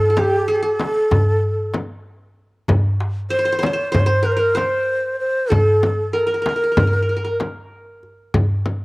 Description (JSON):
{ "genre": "Turkish makam ensemble", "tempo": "191 BPM (eighths)", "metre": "9/8", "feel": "straight", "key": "C makam hicaz", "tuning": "A4 = 441 Hz", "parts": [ { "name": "breathy mellow ney", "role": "melody", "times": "0.0-7.4 s", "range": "G4 to Db5", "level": "-20 LUFS", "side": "equal", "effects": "cassette tape" }, { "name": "qanun", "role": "second line", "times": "0.0-8.4 s", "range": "G4 to C5", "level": "-22 LUFS", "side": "right 1 dB", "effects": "cassette tape" }, { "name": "darbuka", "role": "percussion", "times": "0.2-8.5 s", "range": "none", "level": "-20 LUFS", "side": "equal", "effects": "none" }, { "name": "frame drum", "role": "percussion", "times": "0.2-8.8 s", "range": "none", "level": "-22 LUFS", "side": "left 2 dB", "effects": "none" } ], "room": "light reverb, small room ambience", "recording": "home recording on cassette", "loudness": "-16 LUFS", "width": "side -23 dB against mid", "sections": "0.0-8.8 A section", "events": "none", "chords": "none" }